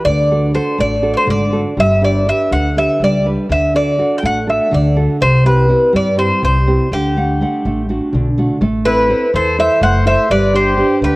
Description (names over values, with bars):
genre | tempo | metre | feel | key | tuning
greek folk, Greek bouzouki band | 246 BPM (eighths) | 7/8 | straight | unclear | A4 = 436 Hz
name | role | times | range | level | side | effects
Greek bouzouki | melody | 0.0-11.2 s | G4 to G5 | -15 LUFS | equal | none
nylon-string guitar | accompaniment | 0.0-11.2 s | C3 to F#5 | -18 LUFS | right 1 dB | none
upright bass | bass | 0.0-11.2 s | F#1 to G2 | -17 LUFS | equal | none
accordion | second line | 8.9-11.2 s | E4 to C5 | -20 LUFS | left 2 dB | none
room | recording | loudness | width
light reverb | worn, warbling old tape, cassette tape, warbly pitch drift | -12 LUFS | side -21 dB against mid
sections
0.0-8.6 A section; 8.6-11.2 B section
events
none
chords
0.1 D; 1.8 G; 3.5 D; 5.2 C; 6.9 D; 8.6 Am; 10.3 G